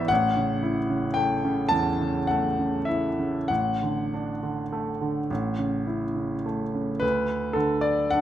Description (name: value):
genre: classical, romantic nocturne for solo piano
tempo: 32-39 BPM (dotted quarters)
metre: 6/8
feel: rubato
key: D major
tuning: A4 = 442 Hz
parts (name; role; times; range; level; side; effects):
- clear baby grand piano; solo; 0.0-8.2 s; G#1 to A5; -23 LUFS; equal; none
room: moderate recital hall reverb, RT60 1.4 s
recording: close, detailed microphones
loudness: -24 LUFS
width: side -11 dB against mid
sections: 0.0-7.0 A section; 7.0-8.2 B section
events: none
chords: 0.1 A; 3.5 D/A; 5.3 A; 7.0 D5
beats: | 0.10 1.71 | 3.49 5.29 | 7.02